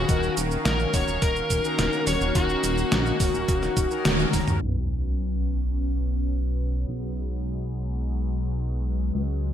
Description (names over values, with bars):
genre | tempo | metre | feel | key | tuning
synthwave | 106 BPM | 4/4 | straight | Eb minor | A4 = 440 Hz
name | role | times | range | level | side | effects
smooth overdriven lead guitar | melody | 0.0-4.3 s | Gb4 to Db5 | -27 LUFS | left 2 dB | vintage 12-bit sampler grit, ping-pong delay
phased analog pad | sustained chords | 0.0-9.5 s | Eb3 to F5 | -32 LUFS | left 1 dB | phaser, chorus, sidechain pumping
mellow synth brass | stabs | 0.0-9.5 s | B2 to B4 | -32 LUFS | left 2 dB | chorus
chorused synth bass | bass | 0.0-9.5 s | Eb1 to Eb2 | -27 LUFS | equal | tube saturation, sidechain pumping
detuned 8-bit digital drum machine | drums | 0.1-4.7 s | cabasa, crash cymbal, hi-hat, snare drum, toms | -27 LUFS | equal | overdrive, gated reverb
electronic kick drum | drums | 0.1-4.4 s | none | -26 LUFS | equal | overdrive
sub drop | sound effects | 4.6-6.9 s | none | -36 LUFS | right 1 dB | none
room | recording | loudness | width
moderate lush hall reverb, RT60 1.6 s | bright 1980s-style digital production, low-pass filter | -22 LUFS | side -10 dB against mid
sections
0.0-4.6 A section; 4.6-9.5 B section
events
drum fill 4.1-4.6; band accent 4.1; impact 4.6-6.9; filter sweep 4.6-9.5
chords
0.1 Ebm7; 4.6 Bsus2; 6.9 Abm7/Cb